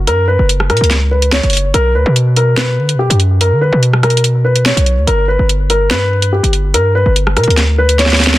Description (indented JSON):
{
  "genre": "hip hop, drill",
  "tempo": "144 BPM",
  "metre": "4/4",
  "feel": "half-time",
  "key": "B harmonic minor",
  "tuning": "A4 = 441 Hz",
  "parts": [
    { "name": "hard-hitting 808-style bass", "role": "bass", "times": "0.0-8.4 s", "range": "F#1 to D3", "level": "-12 LUFS", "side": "equal", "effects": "none" },
    { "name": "dark baby grand piano", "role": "melody", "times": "0.1-8.4 s", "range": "G4 to C#5", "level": "-15 LUFS", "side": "left 1 dB", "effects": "low-pass filter, ping-pong delay" },
    { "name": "drill drum kit", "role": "drums", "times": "0.1-8.4 s", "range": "hi-hat, rim click, snare drum", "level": "-14 LUFS", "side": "equal", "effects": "none" }
  ],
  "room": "little or no reverb",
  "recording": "dense, heavily limited modern master",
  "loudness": "-10 LUFS",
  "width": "side -15 dB against mid",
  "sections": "0.0-8.4 A section",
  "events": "drum fill 8.0-8.4",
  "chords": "0.0 F#5; 1.7 Bm; 5.1 G"
}